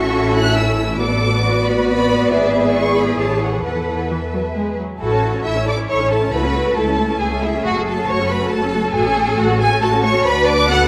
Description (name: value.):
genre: quick classical-period movement for string orchestra.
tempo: 137 BPM.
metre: 3/4.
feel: straight.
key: A major.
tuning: A4 = 437 Hz.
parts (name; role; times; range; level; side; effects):
warm studio violin section; melody; 0.0-10.9 s; E5 to F#6; -25 LUFS; equal; none.
warm studio violin section; second line; 0.0-10.9 s; E4 to F#5; -23 LUFS; equal; none.
rich studio viola section; accompaniment; 0.0-10.9 s; E3 to C#5; -23 LUFS; equal; none.
dark studio double bass section; bass; 0.0-10.9 s; F#1 to E2; -25 LUFS; equal; none.
rich studio cello section; bass; 0.0-10.9 s; E4 to B4; -26 LUFS; equal; none.
room: moderate concert hall reverb, RT60 2.2 s.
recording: none.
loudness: -17 LUFS.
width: mono.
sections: 0.0-5.0 A section; 5.0-10.9 B section.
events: none.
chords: 0.0 A; 1.0 Bm7/A; 2.3 E7/G#; 3.2 A; 3.7 Esus4; 4.6 E; 5.0 A; 6.3 A/C#; 7.6 F#m; 9.0 F#m/A; 10.3 Bm/D.